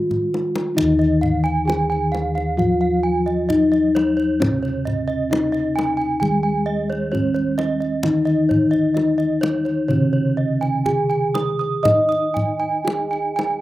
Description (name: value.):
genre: Javanese gamelan.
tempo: 65 BPM.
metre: 4/4.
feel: uneven beats.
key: unclear.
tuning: A4 = 440 Hz.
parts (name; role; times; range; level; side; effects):
gamelan-type bronze metallophone; melody; 0.0-13.6 s; Db4-45c to Eb5; -20 LUFS; left 1 dB; none.
gamelan-type bronze metallophone; accompaniment; 0.0-13.6 s; Db3-45c to Eb4; -25 LUFS; left 1 dB; none.
gamelan-type bossed gongs; bass; 0.0-13.6 s; Eb2 to Eb5; -26 LUFS; equal; none.
kendang; percussion; 0.1-13.6 s; none; -27 LUFS; left 1 dB; none.
gamelan-type bronze metallophone; arpeggios; 0.8-13.6 s; Db5-45c to Eb6; -25 LUFS; right 4 dB; slapback echo.
room: little or no reverb.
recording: recorded outdoors, with no room sound.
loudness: -17 LUFS.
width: side -15 dB against mid.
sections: 0.8-13.6 A section.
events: drum fill 0.0-0.8.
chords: none.